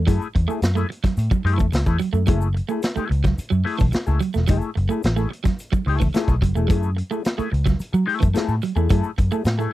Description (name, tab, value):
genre	funk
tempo	109 BPM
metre	4/4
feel	straight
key	F# minor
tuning	A4 = 443 Hz
part	vintage muted picked electric bass	bass	0.0-9.7 s	E1 to F#3	-20 LUFS	equal	none
part	mellow electric guitar	accompaniment	0.1-9.7 s	A3 to G#4	-26 LUFS	left 7 dB	wah
part	electric guitar at the edge of break-up	riff	0.1-9.7 s	E3 to A3	-26 LUFS	right 8 dB	none
part	vintage drum kit	drums	0.1-9.6 s	hi-hat, kick drum, snare drum	-21 LUFS	equal	none
part	egg shaker	percussion	0.1-9.7 s	none	-49 LUFS	left 4 dB	none
room	little or no reverb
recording	dry, close 1970s-style studio recording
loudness	-18 LUFS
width	side -15 dB against mid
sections	0.0-9.7 A section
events	none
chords	0.0 F#m9